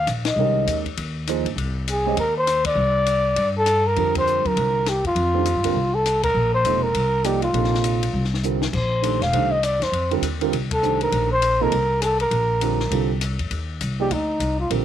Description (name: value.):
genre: modal jazz.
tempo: 201 BPM.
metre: 4/4.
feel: swing 61% on 8ths.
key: Ab major, F mixolydian from 4.0 s.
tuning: A4 = 440 Hz.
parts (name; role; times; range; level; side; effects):
breathy trumpet; melody; 0.0-14.7 s; Eb4 to F5; -21 LUFS; left 1 dB; none.
upright bass; bass; 0.0-14.8 s; E1 to G2; -24 LUFS; left 1 dB; none.
compact cocktail drum kit; drums; 0.1-14.8 s; crash cymbal, hi-hat, kick drum, ride cymbal, rim click, snare drum; -30 LUFS; left 7 dB; none.
dark grand piano; accompaniment; 0.4-14.8 s; C3 to Eb5; -26 LUFS; right 14 dB; none.
room: light reverb, small room ambience.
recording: 1960s-style stereo with parts hard left and right.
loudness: -19 LUFS.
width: side -10 dB against mid.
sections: 0.0-4.0 A section; 4.0-13.5 B section; 13.5-14.8 C section.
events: band accent 0.2, 2.6, 4.1, 6.2, 10.7; drum fill 8.4; trumpet solo 13.5-14.8.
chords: 0.0 Abmaj9; 2.8 Csus2; 4.0 F9sus4; 13.5 Ebmaj7sus2.